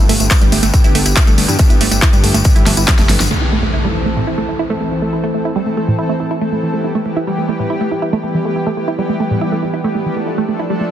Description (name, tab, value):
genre	uplifting trance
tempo	140 BPM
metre	4/4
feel	straight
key	A minor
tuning	A4 = 440 Hz
part	lush unison pad	sustained chords	0.0-10.8 s	D3 to A4	-19 LUFS	equal	chorus, sidechain pumping
part	fat analog bass	bass	0.0-3.3 s	F1 to G2	-17 LUFS	equal	sidechain pumping
part	wide unison pluck	arpeggios	0.1-10.9 s	A2 to E4	-19 LUFS	right 3 dB	sidechain pumping, digital delay
part	big-room dance drum kit	drums	0.1-3.4 s	crash cymbal, handclaps, hi-hat, snare drum	-19 LUFS	equal	overdrive, low-pass filter on snare, studio reverb, low-pass filter on hats, low-pass filter on cymbals
part	tambourine	percussion	0.2-3.3 s	none	-23 LUFS	left 4 dB	none
part	electronic kick drum	drums	0.3-3.0 s	none	-11 LUFS	equal	overdrive, studio reverb
part	impact	sound effects	3.3-5.0 s	none	-21 LUFS	equal	none
room	light reverb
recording	dense, heavily limited modern master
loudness	-12 LUFS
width	side -11 dB against mid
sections	0.0-3.3 A section; 3.3-10.9 B section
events	drum fill 2.7-3.3; band accent 3.2; impact 3.3-5.0; filter sweep on synth arpeggio sound 3.3-10.9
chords	0.0 G; 3.3 Am; 6.7 Em; 10.2 Dm